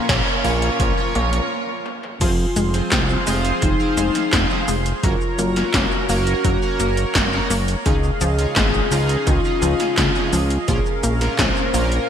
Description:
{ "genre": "synthwave", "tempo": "85 BPM", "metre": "4/4", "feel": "straight", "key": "F phrygian", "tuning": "A4 = 441 Hz", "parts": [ { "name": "soft supersaw", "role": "sustained chords", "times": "0.0-12.1 s", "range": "Bb3 to C6", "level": "-27 LUFS", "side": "right 1 dB", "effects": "analog chorus, sidechain pumping" }, { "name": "chorused polysynth", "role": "stabs", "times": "0.0-12.1 s", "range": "Bb2 to Db5", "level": "-26 LUFS", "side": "right 2 dB", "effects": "ping-pong delay" }, { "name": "wide unison pluck", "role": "arpeggios", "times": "0.1-11.9 s", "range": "Eb3 to Db4", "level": "-27 LUFS", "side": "left 2 dB", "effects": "cassette tape, ping-pong delay" }, { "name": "fat analog bass", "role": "bass", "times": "0.1-12.0 s", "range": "F1 to Db2", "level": "-21 LUFS", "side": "equal", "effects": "none" }, { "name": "80s electronic pad drums", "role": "drums", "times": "0.1-12.1 s", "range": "crash cymbal, handclaps, hi-hat, shaker, snare drum, toms", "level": "-23 LUFS", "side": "equal", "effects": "gated reverb on snare and toms, high-pass filter on hats, high-pass filter on snare, high-pass filter on toms, high-pass filter on cymbals, high-pass filter on perc, high-pass filter on room, gated reverb" }, { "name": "electronic kick drum", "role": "drums", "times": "0.1-11.5 s", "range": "none", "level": "-24 LUFS", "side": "equal", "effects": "none" }, { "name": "soft octave-layered synth lead", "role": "melody", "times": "2.2-12.1 s", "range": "Eb4 to C5", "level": "-25 LUFS", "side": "left 1 dB", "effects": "chorus, phaser, digital delay" } ], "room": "moderate lush hall reverb, RT60 3.2 s", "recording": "bright 1980s-style digital production", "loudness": "-17 LUFS", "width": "side -8 dB against mid", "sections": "0.0-2.2 A section; 2.2-12.1 B section", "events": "stop 1.5-2.2; drum fill 1.9-2.2", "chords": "0.0 Bbm; 2.2 Fm; 5.0 Gb; 7.9 Dbadd9; 10.7 Bbm", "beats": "0.09 0.80 1.50 | 2.21 2.92 3.62 4.33 | 5.03 5.74 6.45 7.15 | 7.86 8.56 9.27 9.97 | 10.68 11.39" }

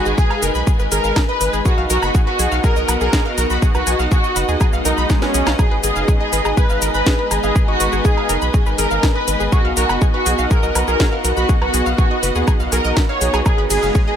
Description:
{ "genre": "melodic techno", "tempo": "122 BPM", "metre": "4/4", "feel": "straight", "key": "G# dorian", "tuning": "A4 = 438 Hz", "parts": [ { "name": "wide unison lead", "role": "melody", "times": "0.0-14.2 s", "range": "C#4 to C#5", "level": "-23 LUFS", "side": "equal", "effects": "analog chorus, sidechain pumping, digital delay" }, { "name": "dark symphonic violin section", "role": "second line", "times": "0.0-14.2 s", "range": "C#4 to C#5", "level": "-24 LUFS", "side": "equal", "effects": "sidechain pumping, digital delay" }, { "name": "lush unison pad", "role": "sustained chords", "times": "0.0-14.2 s", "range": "G#3 to A#5", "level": "-26 LUFS", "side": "equal", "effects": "chorus, sidechain pumping" }, { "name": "rich studio string section", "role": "texture", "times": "0.0-14.2 s", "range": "B3 to G#5", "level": "-26 LUFS", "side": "left 1 dB", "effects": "sidechain pumping" }, { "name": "wide unison pluck", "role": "arpeggios", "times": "0.1-14.1 s", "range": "G#4 to E#6", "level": "-24 LUFS", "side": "right 1 dB", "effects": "sidechain pumping, digital delay" }, { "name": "round analog bass", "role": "bass", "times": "0.1-13.9 s", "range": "F#1 to D#2", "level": "-21 LUFS", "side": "equal", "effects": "sidechain pumping" }, { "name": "techno drum kit", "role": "drums", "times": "0.1-14.0 s", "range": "hi-hat, ride cymbal, shaker, snare drum, woodblock", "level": "-23 LUFS", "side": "equal", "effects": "overdrive" }, { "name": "electronic kick drum", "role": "drums", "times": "0.2-14.1 s", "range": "none", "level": "-16 LUFS", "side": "equal", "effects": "none" }, { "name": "swell", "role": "sound effects", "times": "4.8-5.6 s", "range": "none", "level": "-28 LUFS", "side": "equal", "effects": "none" } ], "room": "digital ambience", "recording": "none", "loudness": "-14 LUFS", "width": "side -9 dB against mid", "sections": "0.0-14.2 A section", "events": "swell 4.8-5.6; drum fill 5.1-5.6", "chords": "0.0 G#m", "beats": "0.18 0.67 1.16 | 1.66 2.15 2.64 3.13 | 3.62 4.11 4.61 5.10 | 5.59 6.08 6.57 7.07 | 7.56 8.05 8.54 9.03 | 9.52 10.02 10.51 11.00 | 11.49 11.98 12.47 12.97 | 13.46 13.95" }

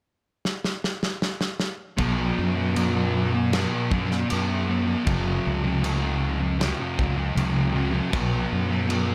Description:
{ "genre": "rock, shoegaze and dream pop", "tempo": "78 BPM", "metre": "4/4", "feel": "straight", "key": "unclear", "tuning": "A4 = 439 Hz", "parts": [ { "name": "loose indie drum kit", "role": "drums", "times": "0.5-9.1 s", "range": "crash cymbal, kick drum, snare drum", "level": "-32 LUFS", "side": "equal", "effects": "none" }, { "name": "fuzz guitar", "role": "riff", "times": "2.0-9.1 s", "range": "F#2 to B3", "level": "-27 LUFS", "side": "equal", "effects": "distortion, subtle chorus" }, { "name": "growling fingered electric bass", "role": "bass", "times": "2.0-9.1 s", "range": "F#1 to F#2", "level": "-28 LUFS", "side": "equal", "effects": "overdrive" } ], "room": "light reverb, small room reverb", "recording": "none", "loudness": "-25 LUFS", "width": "mono", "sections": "0.0-2.0 A section; 2.0-9.1 B section", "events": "drum fill 0.5-2.0", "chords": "0.0 N.C.; 2.0 B5; 5.1 F#5; 8.1 B5", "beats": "0.45 1.22 | 1.99 2.76 3.53 4.30 | 5.07 5.83 6.60 7.37 | 8.13 8.89" }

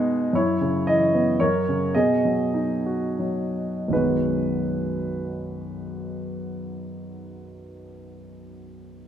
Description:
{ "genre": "classical, lyrical solo piano", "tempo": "79-113 BPM", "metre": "3/4", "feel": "rubato", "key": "B major", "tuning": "A4 = 440 Hz", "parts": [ { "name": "warm grand piano", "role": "solo", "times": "0.0-9.1 s", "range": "B1 to D#5", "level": "-23 LUFS", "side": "equal", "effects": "none" } ], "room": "moderate recital hall reverb, RT60 1.4 s", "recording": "minimal, uncompressed stereo recording", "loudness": "-21 LUFS", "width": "side -10 dB against mid", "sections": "0.3-3.9 A section; 3.9-8.3 B section", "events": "slowing down 0.3-3.9", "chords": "0.3 F#7sus4; 1.4 F#; 2.0 B6", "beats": "| 0.34 0.87 1.41 | 1.95 2.54 3.19 | 3.92 4.66 5.37 | 6.08 6.78 7.51" }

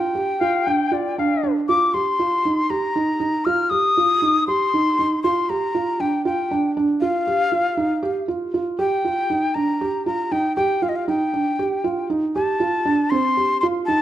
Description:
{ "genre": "contemporary instrumental, chamber music in an uneven meter", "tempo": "236 BPM (eighths)", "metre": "7/8", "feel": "straight", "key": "unclear", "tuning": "A4 = 439 Hz", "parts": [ { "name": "breathy mellow jazz flute", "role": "melody", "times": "0.0-14.0 s", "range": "Eb5 to F6", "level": "-21 LUFS", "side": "left 3 dB", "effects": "none" }, { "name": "felt-muted upright piano", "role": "arpeggios", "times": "0.0-14.0 s", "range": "C4 to G4", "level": "-21 LUFS", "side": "right 3 dB", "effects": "none" }, { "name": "mellow clarinet", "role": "second line", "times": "0.4-1.5 s", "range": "D5 to G5", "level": "-24 LUFS", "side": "left 5 dB", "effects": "none" } ], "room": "moderate recital hall reverb, RT60 1.4 s", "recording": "dark, warm production", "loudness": "-18 LUFS", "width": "side -12 dB against mid", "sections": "0.0-8.8 A section; 8.8-14.0 B section", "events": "none", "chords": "0.0 G7(no3); 1.7 F9sus4; 5.2 Gm7; 7.0 Ebadd9; 8.8 Ebmaj7; 12.4 Dm7", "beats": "0.15 0.41 0.66 0.92 1.17 1.43 | 1.68 1.94 2.19 2.44 2.70 2.95 3.21 | 3.46 3.72 3.97 4.22 4.48 4.73 4.99 | 5.24 5.49 5.75 6.00 6.26 6.51 6.76 | 7.02 7.27 7.53 7.78 8.03 8.29 8.54 | 8.79 9.05 9.30 9.56 9.81 10.06 10.32 | 10.57 10.83 11.08 11.34 11.59 11.84 12.10 | 12.35 12.61 12.86 13.12 13.37 13.62 13.88" }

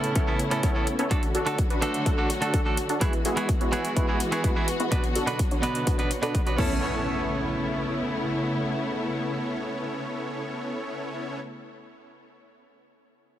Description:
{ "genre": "EDM, festival progressive house", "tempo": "126 BPM", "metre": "4/4", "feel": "straight", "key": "A major", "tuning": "A4 = 440 Hz", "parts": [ { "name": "direct-recorded clean electric guitar", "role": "accompaniment", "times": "0.0-11.4 s", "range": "A2 to B4", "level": "-30 LUFS", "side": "right 2 dB", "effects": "sidechain pumping, ping-pong delay" }, { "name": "warm studio string section", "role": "sustained chords", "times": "0.0-11.4 s", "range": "C#3 to F#4", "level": "-31 LUFS", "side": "left 1 dB", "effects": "sidechain pumping" }, { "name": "big-room dance drum kit", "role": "drums", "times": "0.0-6.7 s", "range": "crash cymbal, hi-hat", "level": "-35 LUFS", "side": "left 1 dB", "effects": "none" }, { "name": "supersaw stab", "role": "riff", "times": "0.2-11.4 s", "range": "G#3 to C#5", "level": "-30 LUFS", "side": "equal", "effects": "sidechain pumping, low-pass filter, ping-pong delay" }, { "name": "electronic kick drum", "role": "drums", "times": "0.2-6.7 s", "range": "none", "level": "-25 LUFS", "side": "equal", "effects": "none" }, { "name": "impact", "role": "sound effects", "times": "6.6-11.5 s", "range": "none", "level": "-37 LUFS", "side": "equal", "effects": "none" } ], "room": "light reverb", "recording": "heavily compressed radio sound", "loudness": "-24 LUFS", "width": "side -12 dB against mid", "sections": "0.0-6.8 A section; 6.8-10.6 B section", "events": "filter sweep on supersaw synth 0.0-6.8", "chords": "0.0 Aadd9; 1.1 D; 3.0 Eadd9; 4.9 Bm; 6.6 Aadd9", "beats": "0.15 0.63 | 1.11 1.58 2.06 2.54 | 3.01 3.49 3.96 4.44 | 4.92 5.39 5.87 6.35 | 6.82 7.30 7.77 8.25 | 8.73 9.20 9.68 10.15" }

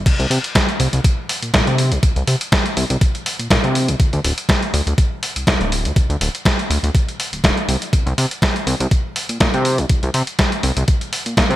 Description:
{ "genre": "nu-disco, nu disco", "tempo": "122 BPM", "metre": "4/4", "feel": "swing 54% on 16ths", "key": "unclear", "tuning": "A4 = 440 Hz", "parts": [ { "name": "fat analog bass", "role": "bass", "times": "0.0-11.6 s", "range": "D1 to C3", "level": "-19 LUFS", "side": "equal", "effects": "none" }, { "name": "dusty soul sampler-style drum kit", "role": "drums", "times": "0.1-11.6 s", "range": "crash cymbal, hi-hat, snare drum", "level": "-19 LUFS", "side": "equal", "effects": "gated reverb" }, { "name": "electronic kick drum", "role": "drums", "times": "0.1-11.5 s", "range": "none", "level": "-17 LUFS", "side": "equal", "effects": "none" } ], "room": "light reverb", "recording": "bright 1980s-style digital production", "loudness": "-15 LUFS", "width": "side -14 dB against mid", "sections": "0.1-11.6 A section", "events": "drop 0.1-11.6", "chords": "none", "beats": "| 0.06 0.55 1.05 1.54 | 2.03 2.52 3.01 3.50 | 4.00 4.49 4.98 5.47 | 5.96 6.46 6.95 7.44 | 7.93 8.42 8.91 9.41 | 9.90 10.39 10.88 11.37" }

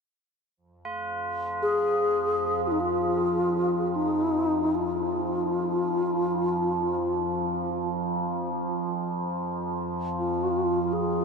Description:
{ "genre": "world meditative, free-time meditation music", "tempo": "free time", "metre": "none", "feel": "none", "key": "F minor pentatonic", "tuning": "A4 = 440 Hz", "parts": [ { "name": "overtone-sweeping drone", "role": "drone", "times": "1.1-11.2 s", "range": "F2 to F3", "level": "-29 LUFS", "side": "right 2 dB", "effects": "chorus, built-in reverb" }, { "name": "tubular bells", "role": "texture", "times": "0.9-9.2 s", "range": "F4", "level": "-36 LUFS", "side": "right 2 dB", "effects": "none" }, { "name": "mellow wooden-headed alto flute", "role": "melody", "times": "1.6-11.2 s", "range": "Eb4 to Ab4", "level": "-26 LUFS", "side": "left 1 dB", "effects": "diffuse ambient delay" } ], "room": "wet huge ambient reverb, RT60 8.7 s", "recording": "in a vast, echoing space", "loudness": "-24 LUFS", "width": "side -5 dB against mid", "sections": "0.6-11.2 A section", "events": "none", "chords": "none", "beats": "free time" }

